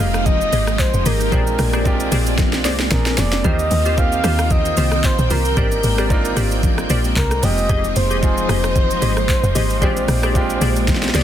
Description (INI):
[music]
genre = amapiano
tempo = 113 BPM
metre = 4/4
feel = swing 55% on 16ths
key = F dorian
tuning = A4 = 440 Hz
[part]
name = breathy flute-like synth lead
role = melody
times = 0.0-11.2 s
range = Bb4 to F5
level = -23 LUFS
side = equal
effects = chorus, tape echo
[part]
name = warm grand piano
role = accompaniment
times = 0.0-11.2 s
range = Ab3 to Bb4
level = -26 LUFS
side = right 3 dB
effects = none
[part]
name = string machine, violins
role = sustained chords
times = 0.0-11.2 s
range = Eb3 to G5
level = -25 LUFS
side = equal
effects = ensemble chorus
[part]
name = glassy wavetable pluck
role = stabs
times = 0.0-11.2 s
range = F4 to Eb5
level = -27 LUFS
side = left 1 dB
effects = chorus, tape echo
[part]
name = tight log drum bass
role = bass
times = 0.0-11.2 s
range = F1 to Eb2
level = -20 LUFS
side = equal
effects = none
[part]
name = afro-pop drum kit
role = drums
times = 0.0-11.2 s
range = handclaps, hi-hat, kick drum, rim click, shaker, snare drum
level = -20 LUFS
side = equal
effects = none
[part]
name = congas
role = percussion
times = 0.0-11.2 s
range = none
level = -29 LUFS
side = left 7 dB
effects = none
[sound]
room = little or no reverb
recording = dense, heavily limited modern master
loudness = -15 LUFS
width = side -10 dB against mid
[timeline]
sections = 0.0-11.2 A section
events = drum fill 2.4-3.4, 10.9-11.2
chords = 0.0 Fm9; 1.3 Bb13; 2.9 Bb7; 3.4 Eb69; 5.6 Abmaj9#11; 7.4 Fm9; 9.8 Bb13